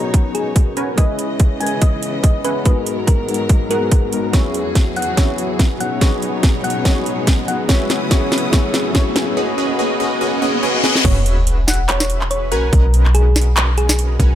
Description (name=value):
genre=future bass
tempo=143 BPM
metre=4/4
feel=swing 55% on 16ths, half-time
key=B major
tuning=A4 = 440 Hz
part: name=dark grand piano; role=accompaniment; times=0.0-9.4 s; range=F#3 to A#5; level=-24 LUFS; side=left 5 dB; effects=sidechain pumping
part: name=rich studio string section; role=sustained chords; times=0.0-9.4 s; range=E2 to D#6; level=-29 LUFS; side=equal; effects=sidechain pumping
part: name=supersaw stab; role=riff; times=0.0-14.3 s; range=B3 to G#5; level=-22 LUFS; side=equal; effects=sidechain pumping, low-pass filter
part: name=riser, reverse cymbal and sub drop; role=sound effects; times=0.4-12.7 s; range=none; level=-26 LUFS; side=equal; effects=none
part: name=electronic kick drum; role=drums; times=0.1-14.3 s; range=none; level=-14 LUFS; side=equal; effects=overdrive
part: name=trap drum kit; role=drums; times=0.1-14.3 s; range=crash cymbal, handclaps, hi-hat, snare drum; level=-21 LUFS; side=equal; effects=overdrive
part: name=thumb-piano-like synth pluck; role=melody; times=0.3-13.9 s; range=G#4 to G#5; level=-25 LUFS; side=equal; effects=chorus, sidechain pumping, tape echo
part: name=warm 808-style bass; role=bass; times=11.0-14.3 s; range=E1 to B1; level=-15 LUFS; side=equal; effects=sidechain pumping
room=light reverb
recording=none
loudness=-14 LUFS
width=side -11 dB against mid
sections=0.0-11.0 A section; 11.0-14.3 B section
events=build-up 0.0-11.0; filter sweep on supersaw synth 0.0-11.0; riser 0.4-11.0; drum fill 4.3-9.4, 10.8; reverse cymbal 10.2-11.0; drop 11.0-14.3; impact 11.0-12.7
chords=0.0 Bmaj9; 1.0 C#m9; 2.7 G#m9; 4.3 E69; 5.8 Badd9; 7.7 C#m9; 9.4 G#m7; 11.0 E69; 12.5 Bmaj9